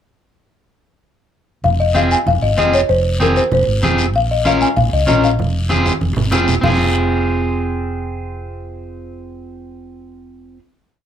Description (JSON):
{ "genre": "latin, cumbia", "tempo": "193 BPM", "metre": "4/4", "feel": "straight", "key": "F minor", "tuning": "A4 = 435 Hz", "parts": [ { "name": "folk marimba with soft mallets", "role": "melody", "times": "1.6-10.6 s", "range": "Bb4 to Ab5", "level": "-17 LUFS", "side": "left 3 dB", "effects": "none" }, { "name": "hollow-body short-scale fingered electric bass", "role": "bass", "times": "1.6-10.6 s", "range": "F1 to Db2", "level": "-19 LUFS", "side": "equal", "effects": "none" }, { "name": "congas", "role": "percussion", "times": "1.6-6.7 s", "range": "none", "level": "-22 LUFS", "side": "right 3 dB", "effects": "none" }, { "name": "guiro", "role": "percussion", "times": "1.6-6.7 s", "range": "none", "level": "-29 LUFS", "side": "left 4 dB", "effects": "none" }, { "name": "electric guitar at the edge of break-up", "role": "accompaniment", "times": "1.9-10.6 s", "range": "C4 to Bb4", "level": "-19 LUFS", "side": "right 1 dB", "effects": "none" } ], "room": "moderate small room reverb, RT60 0.5 s", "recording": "none", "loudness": "-13 LUFS", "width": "side -9 dB against mid", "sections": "1.6-6.6 A section; 6.6-9.1 final chord", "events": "drum fill 5.9-6.6", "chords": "1.6 Fm; 4.1 Bbm; 5.4 Fm" }